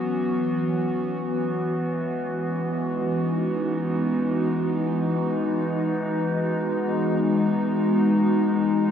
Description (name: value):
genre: ambient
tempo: free time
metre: none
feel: none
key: E major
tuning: A4 = 440 Hz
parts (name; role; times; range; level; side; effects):
- warbly tape-like pad; solo; 0.0-8.9 s; E3 to F#4; -22 LUFS; equal; chorus, built-in reverb, phaser
room: wet huge ambient reverb, RT60 7.9 s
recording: none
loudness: -22 LUFS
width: side -8 dB against mid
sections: 0.0-8.9 A section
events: none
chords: 0.0 F#7sus4/E; 1.4 Emaj9